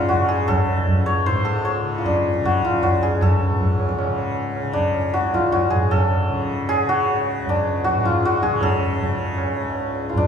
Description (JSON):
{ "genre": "indian classical, Hindustani", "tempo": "155 BPM", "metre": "7/4", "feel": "straight", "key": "C# raga bhairav", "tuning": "A4 = 440 Hz", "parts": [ { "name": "santur", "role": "melody", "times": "0.0-10.3 s", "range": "D4 to C#5", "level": "-21 LUFS", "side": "left 1 dB", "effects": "none" }, { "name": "tanpura", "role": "drone", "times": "0.0-10.3 s", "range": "C#2 to C#3", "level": "-26 LUFS", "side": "left 1 dB", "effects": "none" }, { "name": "tabla", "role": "percussion", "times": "0.1-10.3 s", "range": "none", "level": "-22 LUFS", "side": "right 1 dB", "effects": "none" } ], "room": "wet recital hall reverb, RT60 1.6 s", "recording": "recorded in a church or concert hall, small room ambience", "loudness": "-18 LUFS", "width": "side -7 dB against mid", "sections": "0.0-10.3 A section", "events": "none", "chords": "none", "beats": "0.11 | 0.50 0.89 1.27 1.66 2.05 2.44 2.83 | 3.21 3.60 3.99 4.38 4.76 5.15 5.53 | 5.92 6.31 6.69 7.08 7.46 7.85 8.23 | 8.62 9.00 9.39 9.77 10.15" }